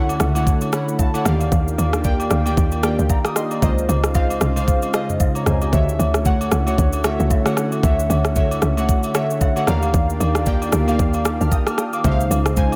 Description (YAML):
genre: amapiano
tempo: 114 BPM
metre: 4/4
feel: swing 58% on 16ths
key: unclear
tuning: A4 = 440 Hz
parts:
  - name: glassy digital keys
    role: accompaniment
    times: 0.0-12.8 s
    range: C#3 to F6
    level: -24 LUFS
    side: equal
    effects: chorus
  - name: lush unison pad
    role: sustained chords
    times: 0.0-12.8 s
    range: C#3 to G4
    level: -30 LUFS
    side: equal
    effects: chorus, sidechain pumping
  - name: woody log drum bass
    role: bass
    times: 0.0-12.8 s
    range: B#1 to Eb2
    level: -23 LUFS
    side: equal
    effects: none
  - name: afro-pop drum kit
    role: drums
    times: 0.1-12.8 s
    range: kick drum, rim click, shaker, toms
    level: -23 LUFS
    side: equal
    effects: none
  - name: agogo bells and woodblock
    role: percussion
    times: 0.1-12.8 s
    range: none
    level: -33 LUFS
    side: equal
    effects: none
room: light reverb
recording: none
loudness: -19 LUFS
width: mono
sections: 0.0-12.8 A section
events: synth keys fill 0.5-1.5, 9.2-9.9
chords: 0.0 Dmaj9; 1.3 Ebmaj9; 3.6 C#maj9; 5.7 Dmaj9; 9.7 Ebmaj9; 12.0 C#maj9